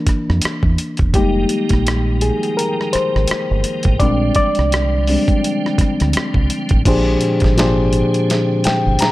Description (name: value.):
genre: R&B, neo-soul.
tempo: 84 BPM.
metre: 4/4.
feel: swing 58% on 16ths.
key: unclear.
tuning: A4 = 440 Hz.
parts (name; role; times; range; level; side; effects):
reed electric piano; accompaniment; 0.0-9.1 s; Bb2 to Bb5; -17 LUFS; left 1 dB; overdrive.
deep dub fingered electric bass; bass; 0.1-9.0 s; E1 to F2; -18 LUFS; right 1 dB; none.
dusty soul sampler-style drum kit; drums; 0.1-9.1 s; crash cymbal, finger snaps, hi-hat, kick drum, rim click, snare drum; -19 LUFS; equal; none.
tonewheel organ; sustained chords; 1.1-9.1 s; D3 to G5; -27 LUFS; right 3 dB; chorus vibrato, slow rotary speaker.
room: digital ambience.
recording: none.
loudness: -14 LUFS.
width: side -17 dB against mid.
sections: 0.0-6.9 A section; 6.9-9.1 B section.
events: reed electric piano solo 0.0-6.9; drum fill 8.3-9.1.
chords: 0.0 C7 (rootless); 1.1 Fm11; 4.0 Bb13 (rootless); 6.9 Bb13.